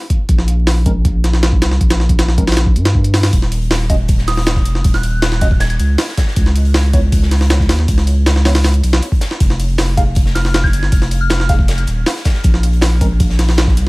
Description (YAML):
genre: drum and bass, jungle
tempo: 158 BPM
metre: 4/4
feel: straight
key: unclear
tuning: A4 = 442 Hz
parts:
  - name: jungle sampler-style drum kit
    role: drums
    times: 0.1-13.9 s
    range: hi-hat, kick drum, snare drum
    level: -14 LUFS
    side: equal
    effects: overdrive
  - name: saturated sub bass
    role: bass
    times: 0.3-13.9 s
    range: Eb1 to G2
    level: -14 LUFS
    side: equal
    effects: none
  - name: mellow tine electric piano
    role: stabs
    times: 0.9-13.1 s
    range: Ab3 to F5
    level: -26 LUFS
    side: equal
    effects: phaser, low-pass filter, dub echo
  - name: big rock drum kit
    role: drums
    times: 3.3-13.9 s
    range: hi-hat, snare drum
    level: -28 LUFS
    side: left 1 dB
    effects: high-pass filter on hats, high-pass filter on snare, high-pass filter on room
  - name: soft synth bell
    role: melody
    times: 4.3-5.8, 10.3-11.5 s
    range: Eb6 to Ab6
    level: -25 LUFS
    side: equal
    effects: chorus, phaser, vintage 12-bit sampler grit, dub echo
room: small room ambience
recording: vinyl crackle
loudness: -11 LUFS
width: side -24 dB against mid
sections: 0.0-13.9 A section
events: filter sweep on tine electric piano 0.0-13.9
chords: none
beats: | 0.29 0.67 1.05 1.43 | 1.81 2.19 2.57 2.95 | 3.33 3.71 4.09 4.47 | 4.85 5.23 5.61 5.99 | 6.37 6.75 7.13 7.50 | 7.88 8.27 8.64 9.02 | 9.40 9.78 10.16 10.54 | 10.92 11.30 11.68 12.06 | 12.44 12.82 13.20 13.58